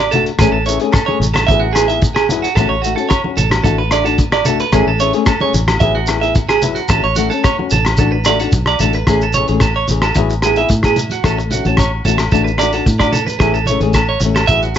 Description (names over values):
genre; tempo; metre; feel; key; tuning
highlife guitar band; 111 BPM; 4/4; straight; A major; A4 = 440 Hz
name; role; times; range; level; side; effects
clean electric guitar; arpeggios; 0.0-14.8 s; F#4 to E5; -17 LUFS; right 8 dB; analog delay
fingered electric bass; bass; 0.0-14.8 s; A1 to A2; -18 LUFS; equal; none
flamenco guitar; accompaniment; 0.1-14.7 s; E3 to G#4; -19 LUFS; left 10 dB; none
cloth-damped thuddy drum kit; drums; 0.1-14.8 s; hi-hat, kick drum, rim click; -18 LUFS; equal; none
congas; percussion; 0.1-14.3 s; none; -23 LUFS; right 2 dB; none
agogo bells; percussion; 0.4-14.5 s; none; -24 LUFS; left 6 dB; none
shekere; percussion; 0.4-14.8 s; none; -22 LUFS; right 1 dB; none
room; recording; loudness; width
light reverb; nothing above 7.8 kHz; -12 LUFS; side -9 dB against mid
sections
0.0-9.1 A section; 9.1-14.8 B section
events
none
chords
0.4 Amaj7; 1.5 Eadd9/A; 2.6 F#m/A; 3.7 Bm7/A; 4.7 Amaj7; 5.8 Eadd9/A; 6.9 F#m/A; 8.0 Bm7/A; 9.1 Amaj7; 10.2 Eadd9/A; 11.2 F#m/A; 12.3 Bm7/A; 13.4 Amaj7